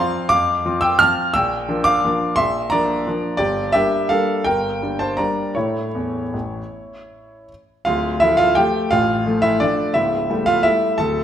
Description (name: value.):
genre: classical, piano waltz.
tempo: 149-186 BPM.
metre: 3/4.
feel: rubato.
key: D minor.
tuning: A4 = 442 Hz.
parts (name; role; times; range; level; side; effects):
clear grand piano; solo; 0.0-11.2 s; C#1 to F6; -16 LUFS; equal; none.
room: moderate recital hall reverb, RT60 1.5 s.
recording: none.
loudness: -16 LUFS.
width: side -10 dB against mid.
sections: 0.0-7.9 A section; 7.9-11.2 B section.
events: none.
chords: 0.0 F; 1.3 Bb; 3.4 Gm; 5.6 A; 7.9 Dm; 9.9 A7/C#.